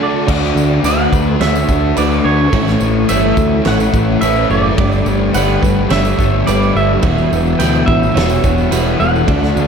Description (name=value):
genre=rock, shoegaze and dream pop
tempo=107 BPM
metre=4/4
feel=straight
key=unclear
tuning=A4 = 440 Hz
part: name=clean electric guitar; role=melody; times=0.0-9.7 s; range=C#5 to G5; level=-19 LUFS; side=right 3 dB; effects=wide subtle chorus, ping-pong delay
part: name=direct-recorded clean electric guitar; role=arpeggios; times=0.0-9.7 s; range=A4 to E5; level=-25 LUFS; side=right 8 dB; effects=lush chorus, ping-pong delay
part: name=direct-recorded clean electric guitar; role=riff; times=0.0-9.7 s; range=A2 to G4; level=-19 LUFS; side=right 8 dB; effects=reverse reverb
part: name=thick fuzz guitar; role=riff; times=0.0-9.7 s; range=E2 to A4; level=-17 LUFS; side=left 8 dB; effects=distortion, analog chorus
part: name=overdriven picked electric bass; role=bass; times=0.3-9.7 s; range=E1 to D2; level=-18 LUFS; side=equal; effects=none
part: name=loose indie drum kit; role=drums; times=0.3-9.5 s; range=crash cymbal, kick drum, snare drum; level=-19 LUFS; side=right 1 dB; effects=none
part: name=tambourine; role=percussion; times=0.6-9.7 s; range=none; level=-34 LUFS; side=right 12 dB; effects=none
room=wet plate reverb, RT60 2.4 s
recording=dreamy mix soaked in reverb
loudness=-11 LUFS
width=side -6 dB against mid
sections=0.3-9.7 A section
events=break 0.0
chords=0.3 D; 2.5 A; 4.8 Gsus2; 7.0 Emadd9